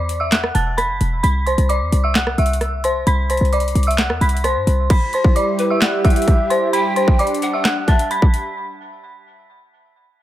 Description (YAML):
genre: hip hop, trap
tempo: 131 BPM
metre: 4/4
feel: half-time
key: E minor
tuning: A4 = 440 Hz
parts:
  - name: dark detuned synth bell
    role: melody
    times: 0.0-8.5 s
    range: C5 to B6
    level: -20 LUFS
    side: equal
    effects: chorus, ping-pong delay
  - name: short 808-style bass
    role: bass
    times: 0.0-4.9 s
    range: E1 to G2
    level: -18 LUFS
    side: equal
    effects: none
  - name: trap drum kit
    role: drums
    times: 0.1-8.4 s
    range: crash cymbal, handclaps, hi-hat, kick drum, rim click, snare drum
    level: -17 LUFS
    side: equal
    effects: overdrive
  - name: warm analog pad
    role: sustained chords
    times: 5.2-8.5 s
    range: G3 to G4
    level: -23 LUFS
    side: right 2 dB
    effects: chorus
  - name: breathy mellow pan flute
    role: second line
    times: 5.6-8.1 s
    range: B4 to G5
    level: -24 LUFS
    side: left 1 dB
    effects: ping-pong delay
room: little or no reverb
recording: none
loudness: -15 LUFS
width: side -13 dB against mid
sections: 0.0-4.9 A section; 4.9-8.6 B section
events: none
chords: 0.0 Esus2; 1.2 C; 4.9 Emadd9